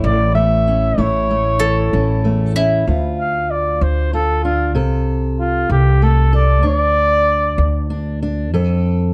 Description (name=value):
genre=acoustic folk duo or small band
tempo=64 BPM (dotted quarters)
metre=6/8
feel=straight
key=D minor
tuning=A4 = 441 Hz
part: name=mandolin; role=second line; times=0.0-2.8 s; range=E4 to C#5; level=-24 LUFS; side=equal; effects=none
part: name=fingerpicked steel-string acoustic guitar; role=accompaniment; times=0.0-9.1 s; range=D2 to A4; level=-24 LUFS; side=equal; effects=none
part: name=upright bass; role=bass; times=0.0-9.1 s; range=A1 to F2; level=-20 LUFS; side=equal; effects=none
part: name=warm flugelhorn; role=melody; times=0.1-7.9 s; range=F4 to F5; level=-20 LUFS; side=equal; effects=none
room=moderate spring reverb, RT60 1.3 s, small room ambience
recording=none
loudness=-16 LUFS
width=mono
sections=0.0-2.9 A section; 2.9-9.1 B section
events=flugelhorn solo 2.9-9.1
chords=0.0 A; 2.9 Dm; 4.8 F/C (rootless); 6.6 N.C.; 8.5 F